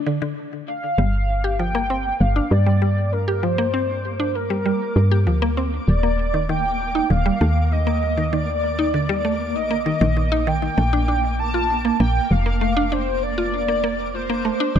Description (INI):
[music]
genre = IDM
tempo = 98 BPM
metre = 4/4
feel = straight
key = G minor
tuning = A4 = 440 Hz
[part]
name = warbly nostalgic lead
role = melody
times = 0.0-14.8 s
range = Bb4 to A5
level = -24 LUFS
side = equal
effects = analog chorus, ping-pong delay
[part]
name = mallet-like synth pluck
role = arpeggios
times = 0.0-14.8 s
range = D3 to G4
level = -24 LUFS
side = equal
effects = chorus, phaser, cassette tape, ping-pong delay
[part]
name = woody FM bass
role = bass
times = 1.0-14.8 s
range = Eb1 to G2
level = -21 LUFS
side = equal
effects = none
[part]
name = flickering grainy texture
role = texture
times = 1.4-14.8 s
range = Bb3 to D6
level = -30 LUFS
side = right 1 dB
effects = built-in reverb
[sound]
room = digital ambience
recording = none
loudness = -18 LUFS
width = side -9 dB against mid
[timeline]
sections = 1.0-14.8 A section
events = break 0.4-1.0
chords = 0.0 D5; 1.0 Gm; 5.9 Ebmaj7(no3); 10.8 Bb69